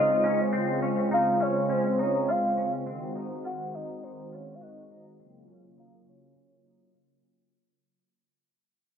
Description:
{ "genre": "dream pop", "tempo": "103 BPM", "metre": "4/4", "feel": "straight", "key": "Db major", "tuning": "A4 = 438 Hz", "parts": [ { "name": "soft octave-layered synth lead", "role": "melody", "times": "0.0-6.9 s", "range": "C5 to Gb5", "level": "-27 LUFS", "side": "equal", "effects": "chorus, tremolo, low-pass filter, ping-pong delay" }, { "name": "lush unison pad", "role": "sustained chords", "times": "0.0-7.5 s", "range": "Db3 to Gb4", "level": "-30 LUFS", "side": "right 1 dB", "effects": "chorus, low-pass filter" }, { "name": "clean electric guitar", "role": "arpeggios", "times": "0.0-7.5 s", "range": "C4 to Gb4", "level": "-35 LUFS", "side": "left 1 dB", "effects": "ensemble chorus, low-pass filter, ping-pong delay" } ], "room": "moderate plate reverb, RT60 2.0 s", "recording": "dark, warm production", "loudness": "-24 LUFS", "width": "side -8 dB against mid", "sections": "0.0-7.5 A section", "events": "fade-out 0.0-7.5; filter sweep 0.0-7.5", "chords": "0.0 Dbmaj7; 2.9 Ab7; 5.2 Gbmaj7" }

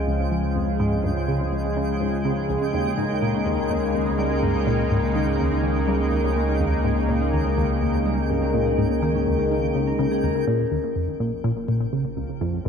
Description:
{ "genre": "ambient, sequencer-driven space music", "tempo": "124 BPM", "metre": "4/4", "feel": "straight", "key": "unclear", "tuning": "A4 = 437 Hz", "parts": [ { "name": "sweeping resonant pad", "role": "sustained chords", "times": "0.0-12.7 s", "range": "Db3 to Bb4", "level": "-25 LUFS", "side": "left 1 dB", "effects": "chorus" }, { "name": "warm sub bass", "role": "bass", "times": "0.0-12.7 s", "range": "Bb1 to Db2", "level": "-28 LUFS", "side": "equal", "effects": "none" }, { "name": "twinkling granular texture", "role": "texture", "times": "0.0-12.7 s", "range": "G5", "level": "-35 LUFS", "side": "right 2 dB", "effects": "built-in reverb" }, { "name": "tight sequenced synth", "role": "riff", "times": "0.1-12.7 s", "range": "Db2 to Bb3", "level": "-25 LUFS", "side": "equal", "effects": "chorus, analog delay" }, { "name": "concert harp", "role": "arpeggios", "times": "2.9-12.7 s", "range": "Bb3 to Bb4", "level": "-27 LUFS", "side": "moving between left 6 dB and right 1 dB", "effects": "auto-pan, analog delay" } ], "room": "wet spring reverb, RT60 2.3 s", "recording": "echo-heavy mix", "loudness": "-20 LUFS", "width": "side -7 dB against mid", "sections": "0.0-10.5 A section; 10.5-12.7 B section", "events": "none", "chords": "0.0 Db; 2.7 Eb7sus4/Db; 10.5 Bbm" }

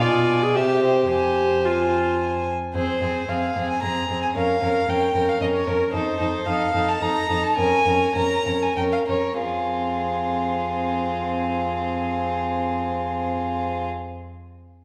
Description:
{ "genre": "quick classical-period movement for string quartet", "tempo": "92-114 BPM", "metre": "3/4", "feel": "straight", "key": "F minor", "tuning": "A4 = 440 Hz", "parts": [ { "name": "rich violin", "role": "melody", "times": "0.0-13.9 s", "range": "Ab4 to Bb5", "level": "-28 LUFS", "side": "equal", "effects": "none" }, { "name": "rich violin", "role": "second line", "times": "0.0-13.9 s", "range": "F4 to E5", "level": "-28 LUFS", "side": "equal", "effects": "none" }, { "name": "warm viola", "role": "accompaniment", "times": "0.0-13.9 s", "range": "C4 to G#4", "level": "-28 LUFS", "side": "equal", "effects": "none" }, { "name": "warm cello", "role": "bass", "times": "0.0-13.9 s", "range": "F2 to C3", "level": "-32 LUFS", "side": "equal", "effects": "none" } ], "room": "wet recital hall reverb, RT60 1.6 s", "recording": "recorded in a church or concert hall", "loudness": "-23 LUFS", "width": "mono", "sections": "0.0-2.7 A section; 2.7-9.4 B section; 9.4-13.2 C section", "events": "slowing down 5.1-9.4", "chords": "0.0 Bdim7; 0.5 C; 1.1 Fm; 4.3 Bbm/F; 5.9 F7; 7.6 Bbm/F; 9.4 Fm" }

